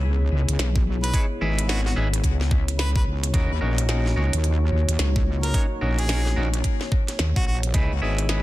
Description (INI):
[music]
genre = glitch hop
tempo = 109 BPM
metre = 4/4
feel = swing 62% on 16ths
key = C# dorian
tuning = A4 = 439 Hz
[part]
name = dark analog pad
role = sustained chords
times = 0.0-8.4 s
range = A#3 to C#5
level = -32 LUFS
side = left 2 dB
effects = chorus, vintage 12-bit sampler grit, sidechain pumping
[part]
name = wobble bass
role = bass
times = 0.0-8.4 s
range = G#1 to D#2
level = -22 LUFS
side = equal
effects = chorus, tube saturation
[part]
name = glitchy drum kit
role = drums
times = 0.5-8.4 s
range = hi-hat, snare drum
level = -29 LUFS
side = right 1 dB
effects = studio ambience
[part]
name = electronic kick drum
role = drums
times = 0.8-7.9 s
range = none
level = -22 LUFS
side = equal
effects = studio ambience
[part]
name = clear harmonica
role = melody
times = 1.0-7.6 s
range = F#4 to B4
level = -34 LUFS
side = equal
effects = ping-pong delay
[part]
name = semi-hollow electric guitar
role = stabs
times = 1.1-8.4 s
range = C#4 to C#5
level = -31 LUFS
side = equal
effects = sidechain pumping, ping-pong delay
[sound]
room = digital ambience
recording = dense, heavily limited modern master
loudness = -20 LUFS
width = side -16 dB against mid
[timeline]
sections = 0.0-8.4 A section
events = none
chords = 0.0 C#m7; 3.3 D#m7; 7.7 C#m7